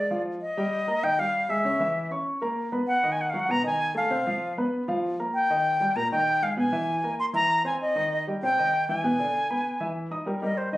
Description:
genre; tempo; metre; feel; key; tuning
jazz; 195 BPM; 4/4; straight; unclear; A4 = 440 Hz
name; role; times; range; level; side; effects
bright reedy concert flute; melody; 0.0-10.8 s; C5 to C6; -24 LUFS; equal; none
warm grand piano; accompaniment; 0.0-10.8 s; Bb2 to Eb6; -28 LUFS; equal; none
room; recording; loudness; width
light reverb; recorded on a phone in the room, club reverb, compression; -23 LUFS; side -16 dB against mid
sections
0.4-10.3 A section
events
none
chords
0.4 Eb; 1.6 Dbm; 2.3 Bbm; 2.9 Abm7; 4.1 Csus4; 4.7 Fsus4; 5.3 Fm11 (rootless); 6.6 E/B; 7.2 Caug7/E; 7.8 Cm; 9.0 E7; 10.3 Eb

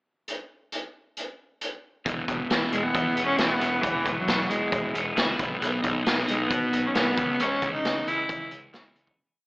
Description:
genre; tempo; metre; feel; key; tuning
quiet-loud alternative rock; 135 BPM; 4/4; straight; E major; A4 = 439 Hz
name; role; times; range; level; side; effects
raw garage drum kit; drums; 0.3-9.2 s; hi-hat, kick drum, snare drum; -28 LUFS; equal; none
twelve-string electric guitar; arpeggios; 2.1-9.2 s; E2 to C#5; -31 LUFS; equal; lush chorus
fuzz picked electric bass; bass; 2.1-9.1 s; E1 to B2; -30 LUFS; equal; overdrive
rich cello; melody; 2.7-8.5 s; E3 to E4; -26 LUFS; equal; none
room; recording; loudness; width
moderate lush hall reverb, RT60 2.0 s; big arena sound, AM radio sound; -23 LUFS; side -29 dB against mid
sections
0.3-2.1 pickup bar; 2.1-9.2 verse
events
fade-out 7.4-9.2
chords
0.3 N.C.; 2.1 E; 5.4 Badd9; 7.2 C#m

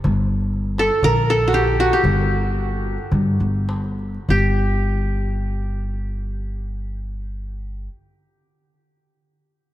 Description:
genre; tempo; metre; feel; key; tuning
Arabic maqam ensemble; 98-123 BPM; 4/4; straight; G maqam nahawand; A4 = 440 Hz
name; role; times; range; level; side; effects
upright bass; bass; 0.0-7.9 s; G1 to G2; -21 LUFS; equal; none
darbuka; percussion; 0.0-4.6 s; none; -26 LUFS; left 1 dB; none
qanun; melody; 0.8-7.9 s; F#4 to Bb4; -20 LUFS; equal; none
room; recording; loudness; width
moderate cathedral reverb, RT60 4.8 s; in a vast, echoing space; -18 LUFS; side -13 dB against mid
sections
0.0-4.3 A section; 4.3-9.2 B section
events
slowing down 0.0-4.3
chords
none

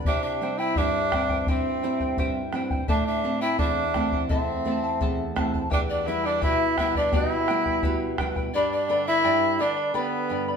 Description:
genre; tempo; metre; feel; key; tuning
andean folk, Andean ensemble; 85 BPM; 2/4; straight; unclear; A4 = 439 Hz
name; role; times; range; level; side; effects
charango; accompaniment; 0.0-10.6 s; E4 to B5; -32 LUFS; left 2 dB; none
nylon-string guitar; accompaniment; 0.0-10.6 s; E2 to E4; -30 LUFS; right 3 dB; none
bombo; percussion; 0.0-8.5 s; none; -28 LUFS; equal; none
mellow tenor saxophone; melody; 0.1-10.6 s; B3 to E4; -26 LUFS; right 1 dB; none
mellow hollow pan flute; second line; 0.1-10.6 s; B4 to G5; -29 LUFS; left 3 dB; none
room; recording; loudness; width
wet studio reverb, RT60 0.7 s; band playing live in one room; -22 LUFS; side -6 dB against mid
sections
0.0-8.5 A section; 8.5-10.6 A section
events
none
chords
0.1 C; 2.9 Am; 5.7 Em; 8.5 G

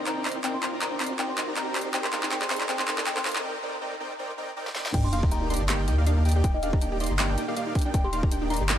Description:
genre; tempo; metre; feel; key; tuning
future bass; 160 BPM; 4/4; swing 55% on 16ths, half-time; unclear; A4 = 440 Hz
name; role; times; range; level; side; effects
wide unison pluck; arpeggios; 0.0-8.8 s; C4 to Eb5; -37 LUFS; left 1 dB; sidechain pumping, ping-pong delay
dense compressed supersaw; riff; 0.0-8.8 s; Bb3 to C6; -32 LUFS; right 1 dB; sidechain pumping
riser and sub drop; sound effects; 0.0-6.4 s; none; -35 LUFS; equal; none
marimba with medium mallets; melody; 0.1-8.6 s; Eb5 to C6; -35 LUFS; left 2 dB; sidechain pumping, dub echo
trap drum kit; drums; 0.1-8.8 s; crash cymbal, handclaps, hi-hat, snare drum; -30 LUFS; equal; overdrive, high-pass filter on snare, high-pass filter on hats, high-pass filter on cymbals
wide unison pluck; arpeggios; 4.9-8.8 s; F5 to C6; -38 LUFS; right 2 dB; sidechain pumping, ping-pong delay
saturated sub bass; bass; 4.9-8.8 s; Eb1 to Eb2; -26 LUFS; equal; sidechain pumping
electronic kick drum; drums; 4.9-8.3 s; none; -25 LUFS; equal; overdrive
room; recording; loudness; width
light reverb; high-pass filter, lossy compression artefacts; -24 LUFS; side -10 dB against mid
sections
0.0-4.9 A section; 4.9-8.8 B section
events
build-up 0.0-4.9; drum fill 0.0-3.4, 4.7; riser 0.0-3.4; filter sweep on synth arpeggio sound 0.0-4.9; break 3.4-4.9; drop 4.9-8.8; impact 4.9-6.4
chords
0.0 Cm11; 4.9 Cm9/Eb

